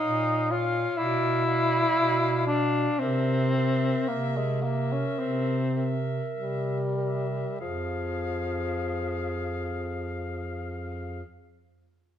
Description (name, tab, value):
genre	classical, lyrical piece for single-reed quartet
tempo	46-65 BPM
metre	4/4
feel	rubato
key	F minor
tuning	A4 = 440 Hz
part	clear soprano saxophone	melody	0.0-11.2 s	E5 to F5	-36 LUFS	left 5 dB	none
part	clear clarinet	second line	0.0-11.2 s	Ab4 to D5	-36 LUFS	right 7 dB	none
part	warm tenor saxophone	accompaniment	0.0-11.2 s	F3 to F4	-27 LUFS	left 2 dB	none
part	mellow bass clarinet	bass	0.0-11.2 s	F2 to C3	-30 LUFS	right 2 dB	none
room	wet large studio reverb, RT60 1.4 s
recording	minimal, uncompressed stereo recording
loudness	-25 LUFS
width	side -10 dB against mid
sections	0.0-7.6 A section; 7.6-12.2 B section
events	slowing down 0.0-7.6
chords	0.0 Bbm; 1.0 Bdim; 3.0 C7; 7.6 Fm